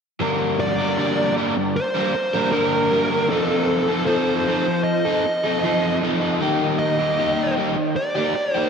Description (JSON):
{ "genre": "rock", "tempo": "78 BPM", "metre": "4/4", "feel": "straight", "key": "G minor", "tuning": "A4 = 440 Hz", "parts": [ { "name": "overdriven electric guitar", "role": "riff", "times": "0.2-8.7 s", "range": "G2 to Bb4", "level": "-20 LUFS", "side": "equal", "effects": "wide subtle chorus" }, { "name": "fuzz lead guitar", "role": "melody", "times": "0.6-8.7 s", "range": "A4 to Eb5", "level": "-22 LUFS", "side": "equal", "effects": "distortion, analog delay" } ], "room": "wet plate reverb, RT60 3.0 s", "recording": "dreamy mix soaked in reverb", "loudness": "-18 LUFS", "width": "side -6 dB against mid", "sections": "0.2-8.7 A section", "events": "none", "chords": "0.2 Gm; 3.3 F7; 6.4 Ebmaj7" }